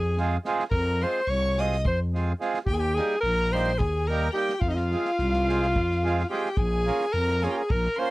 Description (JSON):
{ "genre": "balkan folk, Balkan wedding band", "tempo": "215 BPM (eighths)", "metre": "7/8", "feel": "straight", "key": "F minor", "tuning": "A4 = 439 Hz", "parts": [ { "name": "warm alto saxophone", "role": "melody", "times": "0.0-8.1 s", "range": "Eb4 to Eb5", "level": "-26 LUFS", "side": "equal", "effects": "none" }, { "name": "rich violin", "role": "second line", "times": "0.0-8.1 s", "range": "Eb5 to Eb6", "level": "-35 LUFS", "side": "left 2 dB", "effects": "none" }, { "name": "growling FM bass", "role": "bass", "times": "0.0-7.9 s", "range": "Bb1 to F2", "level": "-26 LUFS", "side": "equal", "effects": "none" }, { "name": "accordion", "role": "accompaniment", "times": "0.2-8.1 s", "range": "G3 to Bb4", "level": "-28 LUFS", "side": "right 4 dB", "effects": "none" }, { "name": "unplugged drum kit", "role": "percussion", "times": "0.2-8.0 s", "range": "kick drum, snare drum", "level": "-31 LUFS", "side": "equal", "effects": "none" } ], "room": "little or no reverb", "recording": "dry, close 1970s-style studio recording", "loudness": "-23 LUFS", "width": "side -19 dB against mid", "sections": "0.0-6.6 A section; 6.6-8.1 B section", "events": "none", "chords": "0.0 Fm; 2.7 Eb; 4.6 Fm; 6.6 Bbm" }